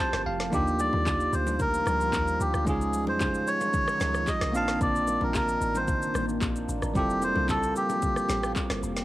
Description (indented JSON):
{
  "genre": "amapiano",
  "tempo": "112 BPM",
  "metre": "4/4",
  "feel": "straight",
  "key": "Eb lydian",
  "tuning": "A4 = 441 Hz",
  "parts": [
    { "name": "melodica", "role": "melody", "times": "0.0-8.5 s", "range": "G4 to F5", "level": "-28 LUFS", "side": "equal", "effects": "cassette tape, analog delay" },
    { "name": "barky tine electric piano", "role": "accompaniment", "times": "0.0-9.0 s", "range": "G3 to A5", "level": "-31 LUFS", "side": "right 2 dB", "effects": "cassette tape" },
    { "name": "deep dark ambient pad", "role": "sustained chords", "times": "0.0-9.0 s", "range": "Eb3 to G4", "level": "-36 LUFS", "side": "equal", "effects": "chorus, built-in reverb, sidechain pumping, cassette tape" },
    { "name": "deep log drum bass", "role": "bass", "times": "0.1-9.0 s", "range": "F1 to F2", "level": "-32 LUFS", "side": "equal", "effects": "none" },
    { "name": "afro-pop drum kit", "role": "drums", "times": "0.1-9.0 s", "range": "handclaps, kick drum, rim click, shaker, snare drum", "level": "-32 LUFS", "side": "equal", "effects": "none" },
    { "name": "congas and bongos", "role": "percussion", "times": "0.5-8.7 s", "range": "none", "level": "-38 LUFS", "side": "left 3 dB", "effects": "none" }
  ],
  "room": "light reverb, digital ambience",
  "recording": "home recording on cassette",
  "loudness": "-24 LUFS",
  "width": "side -16 dB against mid",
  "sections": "0.0-9.0 A section",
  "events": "break 0.0-0.5; tine electric piano fill 0.0-0.5",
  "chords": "0.0 Fmaj9; 0.5 Ebmaj9; 2.7 Dbmaj9; 4.5 Bbmaj9; 7.0 Fmaj9"
}